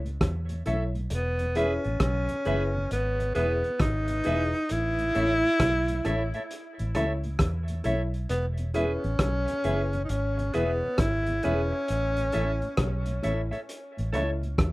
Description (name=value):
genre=roots reggae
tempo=67 BPM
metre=4/4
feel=swing 64% on 16ths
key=E major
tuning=A4 = 441 Hz
part: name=mellow tonewheel organ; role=accompaniment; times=0.0-14.5 s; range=E2 to C#4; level=-36 LUFS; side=equal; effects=slow rotary speaker
part: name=vintage muted fingered electric bass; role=bass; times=0.0-14.7 s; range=E1 to E2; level=-29 LUFS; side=equal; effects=none
part: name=crunchy breakbeat drum kit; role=drums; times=0.1-14.7 s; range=hi-hat, kick drum, rim click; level=-28 LUFS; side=equal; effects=none
part: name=clean electric guitar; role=accompaniment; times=0.7-14.3 s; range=G#4 to E5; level=-34 LUFS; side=right 1 dB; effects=dub echo
part: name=dark concert grand piano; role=stabs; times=0.7-14.3 s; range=E4 to E5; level=-33 LUFS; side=left 2 dB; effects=none
part: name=breathy tenor saxophone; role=melody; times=1.1-13.2 s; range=B3 to E4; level=-28 LUFS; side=equal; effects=dub echo
room=moderate studio ambience, RT60 0.5 s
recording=rough home demo mix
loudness=-25 LUFS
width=side -20 dB against mid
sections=0.0-14.7 A section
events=none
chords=0.0 A; 1.1 E; 4.7 A; 8.3 E; 11.9 A